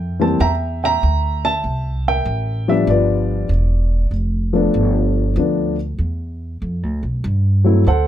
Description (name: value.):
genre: jazz piano trio.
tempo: 97 BPM.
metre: 4/4.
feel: swing 67% on 8ths.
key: G mixolydian.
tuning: A4 = 440 Hz.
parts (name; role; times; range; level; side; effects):
dark baby grand piano; melody; 0.0-8.1 s; E3 to Bb5; -18 LUFS; left 1 dB; none.
upright bass; bass; 0.0-8.1 s; E1 to G2; -18 LUFS; equal; none.
room: light reverb.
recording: none.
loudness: -16 LUFS.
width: side -11 dB against mid.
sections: 0.0-8.1 A section.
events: none.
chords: 0.0 C7; 2.9 G7.